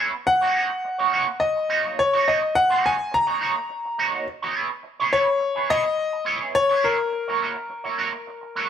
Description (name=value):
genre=disco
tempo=105 BPM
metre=4/4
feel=straight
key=unclear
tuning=A4 = 440 Hz
part: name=electric guitar with an envelope filter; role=accompaniment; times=0.0-8.7 s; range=A#3 to C#5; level=-24 LUFS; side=right 5 dB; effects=wah, lush chorus
part: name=bright baby grand piano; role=melody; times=0.3-8.7 s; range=A#4 to A#5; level=-21 LUFS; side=left 2 dB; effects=none
room=moderate echo chamber reverb, RT60 1.2 s, small room ambience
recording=none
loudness=-20 LUFS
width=side -8 dB against mid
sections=0.0-8.7 A section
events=none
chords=0.3 D#m7; 4.6 C#m7; 7.1 F#7